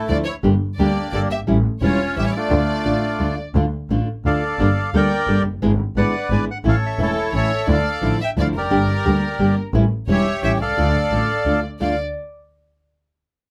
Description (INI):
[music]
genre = tango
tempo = 174 BPM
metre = 3/4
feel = rubato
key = D harmonic minor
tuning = A4 = 440 Hz
[part]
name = bandoneon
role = melody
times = 0.0-12.0 s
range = A3 to G#5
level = -25 LUFS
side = equal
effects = none
[part]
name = warm studio violin section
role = second line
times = 0.0-3.3, 7.0-12.0 s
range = A4 to E5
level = -29 LUFS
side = equal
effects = none
[part]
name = nylon-string guitar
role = accompaniment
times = 0.1-11.9 s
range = D3 to A4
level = -24 LUFS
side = equal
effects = none
[part]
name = clear double bass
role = bass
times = 0.1-11.9 s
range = E1 to D2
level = -24 LUFS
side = equal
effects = none
[sound]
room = light reverb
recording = close, detailed microphones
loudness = -19 LUFS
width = mono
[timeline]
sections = 0.0-3.6 A section; 3.6-11.8 A section; 11.8-12.8 B section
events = none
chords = 0.4 Gm; 1.5 A7; 2.5 Dm; 4.6 Gmadd9; 5.6 E7/G#; 6.6 A; 7.7 Dmadd9; 8.7 Gm; 9.7 A7; 10.8 Dm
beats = 0.09 | 0.44 0.79 1.13 | 1.48 1.82 2.17 | 2.51 2.86 3.20 | 3.55 3.90 4.24 | 4.59 4.93 5.27 | 5.62 5.96 6.30 | 6.65 6.99 7.34 | 7.68 8.03 8.37 | 8.72 9.06 9.40 | 9.74 10.09 10.43 | 10.77 11.11 11.46 | 11.80